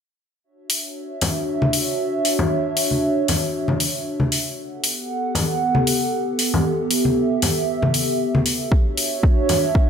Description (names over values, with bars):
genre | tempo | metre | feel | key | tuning
deep house | 116 BPM | 4/4 | swing 56% on 16ths | D major | A4 = 440 Hz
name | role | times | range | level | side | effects
hollow soft pad | sustained chords | 0.4-9.9 s | B3 to F#5 | -22 LUFS | right 1 dB | chorus, sidechain pumping
electronic hi-hat | drums | 0.7-9.6 s | none | -23 LUFS | left 2 dB | studio reverb
congas | percussion | 1.2-9.6 s | none | -23 LUFS | left 1 dB | none
electronic kick drum | drums | 8.7-9.9 s | none | -16 LUFS | equal | studio reverb
room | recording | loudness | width
moderate echo chamber reverb, RT60 1.8 s | none | -18 LUFS | side -7 dB against mid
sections
0.4-9.9 A section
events
none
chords
0.4 Dmaj9; 4.6 Gmaj9; 8.7 Dmaj9